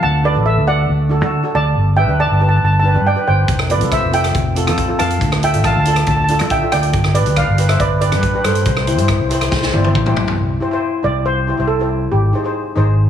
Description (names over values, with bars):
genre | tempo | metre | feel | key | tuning
calypso | 139 BPM | 4/4 | straight | C major | A4 = 440 Hz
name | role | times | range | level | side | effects
steel pan | melody | 0.0-12.7 s | G4 to A5 | -18 LUFS | right 1 dB | none
steel pan | accompaniment | 0.0-13.0 s | C4 to D5 | -22 LUFS | left 1 dB | none
fingered electric bass | bass | 0.0-13.1 s | F1 to D3 | -16 LUFS | equal | none
swinging big-band drum kit | drums | 3.5-10.4 s | hi-hat, kick drum, rim click, snare drum, toms | -20 LUFS | equal | none
room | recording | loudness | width
light reverb | heavily compressed radio sound, multiband compression, studio ambience | -13 LUFS | side -9 dB against mid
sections
0.0-10.4 A section; 10.4-13.1 B section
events
drum fill 9.5-10.4; steel pan solo 10.4-13.1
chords
0.0 D; 1.8 G; 3.5 Fadd9; 5.2 Dmadd9; 6.9 G; 8.7 C; 10.4 C6; 12.1 Abmaj7